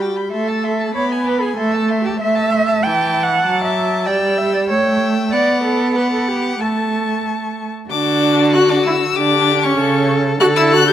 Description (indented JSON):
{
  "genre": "quick classical-period movement for string quartet",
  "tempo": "96 BPM",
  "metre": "2/4",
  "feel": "straight",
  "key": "D major",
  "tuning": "A4 = 440 Hz",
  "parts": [
    { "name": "warm violin", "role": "melody", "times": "0.0-10.9 s", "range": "B5 to G6", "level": "-23 LUFS", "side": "left 10 dB", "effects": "none" },
    { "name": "warm violin", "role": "second line", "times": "0.0-10.9 s", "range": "F#4 to B5", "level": "-21 LUFS", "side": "left 3 dB", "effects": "none" },
    { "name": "rich viola", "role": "accompaniment", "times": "0.0-10.9 s", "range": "E3 to G4", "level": "-18 LUFS", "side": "right 1 dB", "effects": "none" },
    { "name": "warm cello", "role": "bass", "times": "0.3-10.9 s", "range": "C#3 to G5", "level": "-19 LUFS", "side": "right 3 dB", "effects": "none" }
  ],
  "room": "moderate scoring stage reverb, RT60 1.9 s",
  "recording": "none",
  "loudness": "-14 LUFS",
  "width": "side -10 dB against mid",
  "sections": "0.0-7.9 A section; 7.9-10.9 B section",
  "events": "none",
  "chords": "0.3 Am; 0.9 G#dim/B; 1.6 Am; 2.8 A7/E; 3.5 D/F#; 4.1 Em7/G; 4.7 A7; 5.3 Bm; 6.6 A; 7.9 D; 9.2 Dsus4; 9.8 A/C#; 10.4 D5"
}